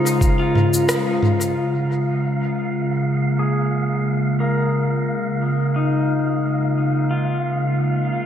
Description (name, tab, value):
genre	ambient dub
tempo	89 BPM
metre	4/4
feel	swing 55% on 16ths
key	Bb minor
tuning	A4 = 440 Hz
part	warbly tape-like pad	sustained chords	0.0-8.3 s	Db3 to C5	-19 LUFS	equal	chorus, built-in reverb
part	pedal steel guitar	arpeggios	0.0-8.3 s	Eb4 to F5	-26 LUFS	left 4 dB	low-pass filter, dub echo
part	wind-like tuned noise texture	texture	0.0-8.3 s	F5	-30 LUFS	equal	built-in reverb
part	organic electronic drum kit	drums	0.1-1.5 s	cabasa, rim click, toms	-21 LUFS	left 1 dB	dub echo
room	moderate echo chamber reverb, RT60 2.4 s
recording	none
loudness	-18 LUFS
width	side -9 dB against mid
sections	0.0-1.6 A section; 1.6-8.3 B section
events	band accent 0.9-1.2; filter sweep on pedal steel guitar 1.6-8.3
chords	0.0 Bbm7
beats	0.21 0.89 | 1.56 2.23 2.91 3.58 | 4.26 4.93 5.60 6.28 | 6.95 7.63